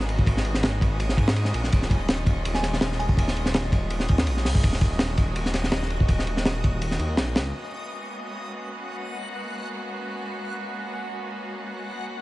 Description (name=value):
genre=drum and bass, jungle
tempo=165 BPM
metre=4/4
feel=swing 54% on 16ths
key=G# dorian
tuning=A4 = 440 Hz
part: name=bright studio string section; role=sustained chords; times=0.0-12.2 s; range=F#3 to F#4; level=-34 LUFS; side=right 1 dB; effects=none
part: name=detuned saw bass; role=bass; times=0.0-7.5 s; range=D#1 to G#2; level=-26 LUFS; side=equal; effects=none
part: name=crunchy breakbeat drum kit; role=drums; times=0.0-7.5 s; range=hi-hat, kick drum, ride cymbal, snare drum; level=-23 LUFS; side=equal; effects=none
part: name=backwards swelling texture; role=texture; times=0.0-12.2 s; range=D#5 to F#6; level=-36 LUFS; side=left 1 dB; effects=built-in reverb
part: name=glassy synth bell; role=melody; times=2.5-3.1 s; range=G#5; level=-35 LUFS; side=right 2 dB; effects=chorus, dub echo
room=light reverb, small room ambience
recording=vinyl crackle, nothing above 10.3 kHz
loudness=-23 LUFS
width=side -18 dB against mid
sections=0.0-7.5 A section; 7.5-12.2 B section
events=drop 0.0-7.5; kick drops out 6.8-7.5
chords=0.0 G#m11; 1.7 D#m11; 7.5 G#m11